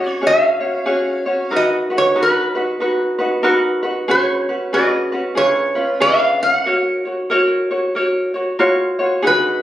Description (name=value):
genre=hawaiian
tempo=93 BPM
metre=4/4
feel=swing 62% on 8ths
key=F# major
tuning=A4 = 437 Hz
part: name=metal-body resonator slide guitar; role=melody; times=0.0-9.6 s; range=B4 to F#5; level=-17 LUFS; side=right 1 dB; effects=plate reverb
part: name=ukulele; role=accompaniment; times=0.0-9.6 s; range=C#4 to C#5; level=-17 LUFS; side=equal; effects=none
room=moderate studio reverb, RT60 0.5 s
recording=recorded on a phone in the room, club reverb, compression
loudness=-15 LUFS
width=side -12 dB against mid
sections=0.0-9.2 A section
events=none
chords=0.0 F#sus2; 1.5 Bmaj7; 4.1 C#7sus4; 5.4 C#7; 6.7 F#maj7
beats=0.22 0.86 | 1.51 2.15 2.79 3.44 | 4.08 4.72 5.37 6.01 | 6.66 7.30 7.94 8.59 | 9.23